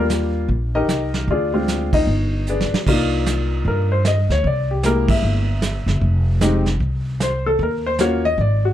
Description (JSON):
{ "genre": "jazz piano trio", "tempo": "152 BPM", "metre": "4/4", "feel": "swing 64% on 8ths", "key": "C minor", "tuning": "A4 = 440 Hz", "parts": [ { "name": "clear concert grand piano", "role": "melody", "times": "0.0-8.7 s", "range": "G3 to E5", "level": "-20 LUFS", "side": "left 2 dB", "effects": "none" }, { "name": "upright bass", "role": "bass", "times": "0.0-8.7 s", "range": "F1 to G2", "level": "-20 LUFS", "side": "equal", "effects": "none" }, { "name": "vintage brush drum kit", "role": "drums", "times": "0.1-8.7 s", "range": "brushed snare drum, crash cymbal, hi-hat, kick drum, ride cymbal, snare drum", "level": "-24 LUFS", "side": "right 2 dB", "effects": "none" } ], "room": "light reverb", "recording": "dark, warm production", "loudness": "-17 LUFS", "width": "side -11 dB against mid", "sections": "0.0-2.9 A section; 2.9-8.7 B section", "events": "band accent 1.9, 5.0; drum fill 2.5-2.9", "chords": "0.0 Ebmaj9; 1.3 Dm7b5; 2.1 G; 2.9 Cm11; 4.4 C7b13; 6.0 F5; 7.6 Ebm7" }